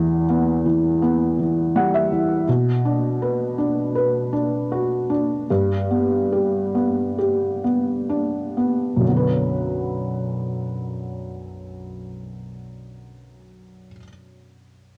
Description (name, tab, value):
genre	folk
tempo	60-82 BPM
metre	4/4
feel	straight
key	B minor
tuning	A4 = 440 Hz
part	felt-muted upright piano	solo	0.0-15.0 s	B1 to F#5	-22 LUFS	equal	cassette tape
room	light reverb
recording	home recording on cassette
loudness	-21 LUFS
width	mono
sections	0.0-9.0 A section; 9.0-13.1 B section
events	slowing down 2.5-9.0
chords	0.0 Em; 2.5 Bm; 5.5 G; 9.0 Bm